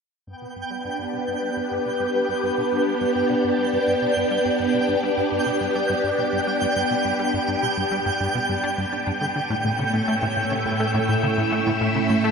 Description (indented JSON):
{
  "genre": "ambient, sequencer-driven space music",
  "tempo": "104 BPM",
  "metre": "4/4",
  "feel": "straight",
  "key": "G lydian",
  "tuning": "A4 = 441 Hz",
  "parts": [
    { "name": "phased string machine", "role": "sustained chords", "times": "0.3-12.3 s", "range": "A2 to E5", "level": "-22 LUFS", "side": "equal", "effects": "ensemble chorus, phaser" },
    { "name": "plucky analog bass", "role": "riff", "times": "0.3-12.3 s", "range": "G2 to D4", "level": "-28 LUFS", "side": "left 1 dB", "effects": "wide subtle chorus, tape echo" },
    { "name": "twinkling granular texture", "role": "texture", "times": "0.3-12.3 s", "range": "G5", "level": "-27 LUFS", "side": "right 1 dB", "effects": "built-in reverb" }
  ],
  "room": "wet huge ambient reverb, RT60 7.6 s",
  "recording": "none",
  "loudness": "-20 LUFS",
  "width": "side -5 dB against mid",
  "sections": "0.3-12.3 A section",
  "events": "fade-in on analog synth bass 0.3-12.3",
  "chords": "0.3 G; 9.5 A"
}